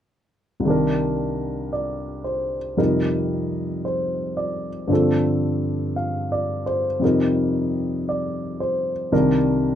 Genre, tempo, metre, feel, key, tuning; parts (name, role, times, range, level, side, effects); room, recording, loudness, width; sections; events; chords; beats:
jazz; 57 BPM; 4/4; swing 66% on 8ths; A4 = 440 Hz
warm baby grand piano; accompaniment; 0.6-9.8 s; C2 to F5; -20 LUFS; equal
light reverb; -20 LUFS; side -10 dB against mid
0.7-9.8 A section
0.7 Cm9; 2.8 F9sus4; 4.9 G9sus4; 7.0 F9sus4; 9.1 Cm9
| 0.66 1.72 2.79 3.85 | 4.90 5.96 7.02 8.07 | 9.13